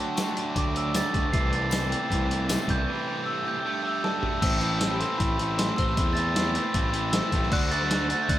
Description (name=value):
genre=indie rock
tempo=155 BPM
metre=4/4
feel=straight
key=A dorian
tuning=A4 = 440 Hz
part: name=glockenspiel with rubber mallets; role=melody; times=0.0-8.4 s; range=A5 to C7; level=-29 LUFS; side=right 2 dB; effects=none
part: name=bright tonewheel organ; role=sustained chords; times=0.0-8.4 s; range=D4 to A5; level=-41 LUFS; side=left 1 dB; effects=none
part: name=fuzz guitar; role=riff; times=0.0-8.4 s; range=A2 to G4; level=-32 LUFS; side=right 6 dB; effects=distortion, wide subtle chorus
part: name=sludgy distorted guitar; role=riff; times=0.0-8.4 s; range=E3 to G4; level=-33 LUFS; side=left 7 dB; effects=overdrive
part: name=trip hop sampler-style drum kit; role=drums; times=0.2-8.4 s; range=crash cymbal, hi-hat, kick drum, snare drum, tambourine, toms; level=-27 LUFS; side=equal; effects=none
part: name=tambourine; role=percussion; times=0.2-2.6 s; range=none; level=-39 LUFS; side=left 8 dB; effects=none
part: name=fuzz picked electric bass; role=bass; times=0.6-8.4 s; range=A1 to E2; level=-30 LUFS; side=equal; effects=overdrive
part: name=glassy synth bell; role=second line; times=4.4-8.4 s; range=E4 to F#5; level=-39 LUFS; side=left 4 dB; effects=chorus, tremolo
room=little or no reverb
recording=none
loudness=-23 LUFS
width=side -13 dB against mid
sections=0.0-4.4 A section; 4.4-8.4 B section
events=glockenspiel solo 0.0-4.4; break 2.9-4.4; drum fill 4.0-4.4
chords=0.0 D; 1.3 Am/C; 2.9 C6; 3.6 Gsus2; 4.4 Am; 7.5 D7